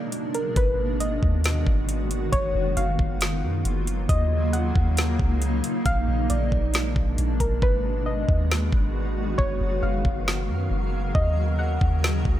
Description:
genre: hip hop, atmospheric cloud-rap.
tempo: 136 BPM.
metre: 4/4.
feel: half-time.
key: F# major.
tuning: A4 = 440 Hz.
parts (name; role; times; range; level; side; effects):
soft round pluck; melody; 0.0-12.4 s; A#4 to F#5; -30 LUFS; left 1 dB; chorus, tape echo.
granular cloud pad; sustained chords; 0.0-12.4 s; B2 to E#5; -29 LUFS; equal; built-in reverb, sidechain pumping.
smooth R&B drum kit; drums; 0.1-12.4 s; hi-hat, kick drum, snare drum; -25 LUFS; equal; none.
soft 808-style bass; bass; 0.6-12.4 s; F#1 to F#2; -24 LUFS; equal; none.
wind-like tuned noise texture; texture; 8.1-12.4 s; G#3 to E#5; -39 LUFS; right 1 dB; built-in reverb.
room: digital ambience.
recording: none.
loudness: -21 LUFS.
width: side -12 dB against mid.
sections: 0.0-12.4 A section.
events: break 0.0-0.6; hi-hats muted 7.6-12.4.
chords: 0.0 A#7b9; 0.6 G#m7; 2.3 F#maj7; 4.1 D#m7; 5.9 A#7b9; 7.6 G#m7; 9.4 F#maj7; 11.2 D#m7.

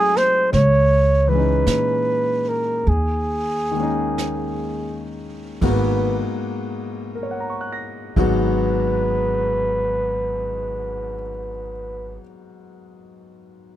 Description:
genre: jazz ballad.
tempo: 40-55 BPM.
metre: 4/4.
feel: swing 68% on 8ths.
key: G# minor.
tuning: A4 = 439 Hz.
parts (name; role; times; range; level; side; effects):
breathy flugelhorn; melody; 0.0-12.2 s; G#4 to C#5; -21 LUFS; right 2 dB; none.
clear concert grand piano; accompaniment; 0.0-13.8 s; G#2 to A#6; -25 LUFS; left 3 dB; none.
jazz brush drum kit; drums; 0.2-8.4 s; brushed snare drum, hi-hat, kick drum, ride cymbal, snare drum; -31 LUFS; right 3 dB; none.
upright bass; bass; 0.5-12.2 s; G#1 to A#2; -23 LUFS; equal; none.
room: little or no reverb.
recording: close, detailed microphones.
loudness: -18 LUFS.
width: side -12 dB against mid.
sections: 0.5-5.6 A section; 5.6-11.7 B section.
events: slowing down 0.0-5.6.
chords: 0.0 G#7b9; 0.5 C#m7; 2.9 D#7sus4; 5.6 G#m9.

